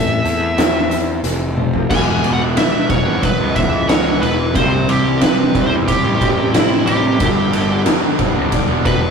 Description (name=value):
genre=quiet-loud alternative rock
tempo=91 BPM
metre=4/4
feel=straight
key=unclear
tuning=A4 = 440 Hz
part: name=high-gain lead guitar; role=melody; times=0.0-9.1 s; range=E4 to G#5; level=-20 LUFS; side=equal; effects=distortion
part: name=twelve-string electric guitar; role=arpeggios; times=0.0-9.1 s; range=E2 to A4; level=-25 LUFS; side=left 2 dB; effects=none
part: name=fuzz picked electric bass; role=bass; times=0.0-9.1 s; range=E1 to E2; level=-21 LUFS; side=equal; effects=overdrive
part: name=oversized low-tuned drum kit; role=drums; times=0.3-9.0 s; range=crash cymbal, hi-hat, kick drum, ride cymbal, snare drum, toms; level=-17 LUFS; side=equal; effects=none
part: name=distorted electric guitar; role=riff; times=1.9-9.1 s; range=G2 to E4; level=-21 LUFS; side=right 4 dB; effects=distortion
part: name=fuzz guitar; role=riff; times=1.9-9.1 s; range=G2 to E4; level=-24 LUFS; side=left 2 dB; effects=distortion
room=light reverb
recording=rough rehearsal-room recording, tube saturation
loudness=-13 LUFS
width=side -6 dB against mid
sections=0.0-1.9 A section; 1.9-9.1 B section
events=half time 0.0-1.9; drum fill 1.6-1.9; lead electric guitar solo 1.9-9.1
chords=0.0 Am; 1.9 E; 4.6 C; 7.2 G